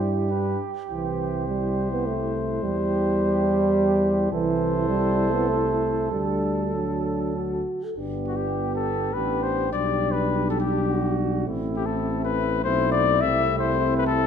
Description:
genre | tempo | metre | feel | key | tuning
classical, brass quintet | 95-108 BPM | 3/4 | rubato | C major, G major from 4.3 s | A4 = 440 Hz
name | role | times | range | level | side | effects
mellow trumpet | melody | 0.0-14.3 s | F#4 to E5 | -28 LUFS | left 8 dB | none
mellow flugelhorn | second line | 0.0-14.3 s | E4 to A4 | -30 LUFS | right 8 dB | none
dark French horn | accompaniment | 0.0-14.3 s | C4 to A4 | -31 LUFS | left 5 dB | none
mellow trombone | accompaniment | 0.0-14.2 s | E3 to B3 | -26 LUFS | right 1 dB | none
mellow bass trombone | bass | 0.0-14.3 s | G1 to G2 | -28 LUFS | right 1 dB | none
room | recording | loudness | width
moderate scoring stage reverb, RT60 1.5 s | none | -22 LUFS | side -8 dB against mid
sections
0.0-8.0 A section; 8.0-14.3 B section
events
none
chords
0.3 G; 0.9 C; 2.6 C/E; 4.3 Am/C; 6.1 D; 8.0 G; 9.7 G/B; 11.5 Am; 13.2 Am/C

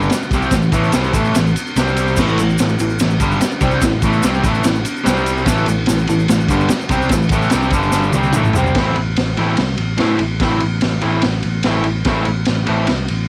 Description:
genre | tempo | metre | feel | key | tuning
garage rock duo or trio | 146 BPM | 4/4 | straight | A minor | A4 = 439 Hz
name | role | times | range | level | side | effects
raw garage guitar | riff | 0.0-12.9 s | G2 to E4 | -20 LUFS | equal | overdrive
picked electric bass | bass | 0.0-13.3 s | G1 to A2 | -22 LUFS | equal | tube saturation
egg shaker | percussion | 0.0-8.7 s | none | -33 LUFS | equal | none
crunchy breakbeat drum kit | drums | 0.1-13.2 s | crash cymbal, kick drum, ride cymbal, snare drum, toms | -21 LUFS | equal | none
room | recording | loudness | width
little or no reverb | home recording on cassette | -16 LUFS | mono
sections
0.0-8.8 A section; 8.8-13.3 B section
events
drum fill 7.9-8.8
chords
0.0 Am; 1.8 C5; 2.2 Am; 5.1 C5; 5.5 Am; 7.7 G5; 8.1 Am

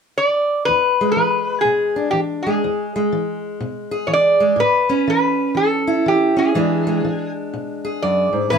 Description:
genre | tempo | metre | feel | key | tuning
acoustic country blues, solo or duo | 122 BPM | 4/4 | swing 62% on 8ths | E mixolydian | A4 = 440 Hz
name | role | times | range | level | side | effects
lap resonator guitar | melody | 0.2-8.6 s | G4 to D5 | -17 LUFS | equal | none
fingerpicked steel-string acoustic guitar | accompaniment | 0.7-8.6 s | E2 to G#4 | -20 LUFS | right 1 dB | none
room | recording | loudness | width
wet studio reverb, RT60 0.5 s | minimal, uncompressed stereo recording | -16 LUFS | side -6 dB against mid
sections
0.7-8.6 A section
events
none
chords
0.0 N.C.; 0.7 E7; 4.6 A; 6.6 E7

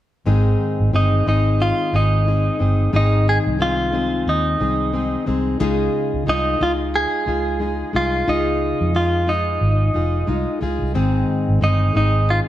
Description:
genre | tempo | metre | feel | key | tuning
acoustic pop | 90 BPM | 4/4 | swing 60% on 16ths | Ab major | A4 = 438 Hz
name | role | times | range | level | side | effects
fingerpicked plugged-in steel-string acoustic guitar | accompaniment | 0.3-12.5 s | Ab2 to Ab4 | -22 LUFS | left 2 dB | none
vintage muted fingered electric bass | bass | 0.3-12.4 s | F1 to F2 | -20 LUFS | right 1 dB | none
direct-recorded clean electric guitar | melody | 1.0-12.4 s | Eb4 to Ab4 | -21 LUFS | equal | spring reverb
room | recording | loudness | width
moderate stone room reverb, RT60 1.1 s | band playing live in one room | -16 LUFS | side -13 dB against mid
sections
0.3-12.5 A section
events
none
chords
0.3 Ab; 5.6 Dbadd9; 10.9 Ab

